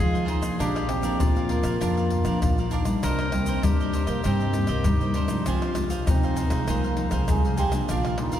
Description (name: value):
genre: samba and choro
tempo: 99 BPM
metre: 4/4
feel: straight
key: unclear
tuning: A4 = 443 Hz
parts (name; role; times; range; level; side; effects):
- breathy trombone; melody; 0.0-8.4 s; Ab3 to Ab4; -30 LUFS; right 3 dB; none
- clear clarinet; second line; 0.0-8.4 s; Eb4 to Bb4; -31 LUFS; left 3 dB; none
- cavaquinho; accompaniment; 0.0-8.4 s; D4 to F5; -35 LUFS; right 2 dB; none
- nylon-string guitar; accompaniment; 0.0-8.4 s; F2 to Eb4; -30 LUFS; left 2 dB; none
- upright bass; bass; 0.0-8.4 s; Bb1 to F3; -27 LUFS; equal; none
- egg shaker, pandeiro, surdo and tamborim; percussion; 0.1-8.4 s; none; -27 LUFS; left 1 dB; none
room: wet cathedral reverb, RT60 4.7 s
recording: recorded in a church or concert hall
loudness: -22 LUFS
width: side -10 dB against mid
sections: 0.0-8.4 A section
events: none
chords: 0.0 Fm7; 0.6 Bb; 3.0 Cm7; 5.5 Fm7/C; 7.9 Bb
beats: | 0.59 1.20 1.81 2.42 | 3.03 3.64 4.25 4.86 | 5.46 6.07 6.68 7.29 | 7.90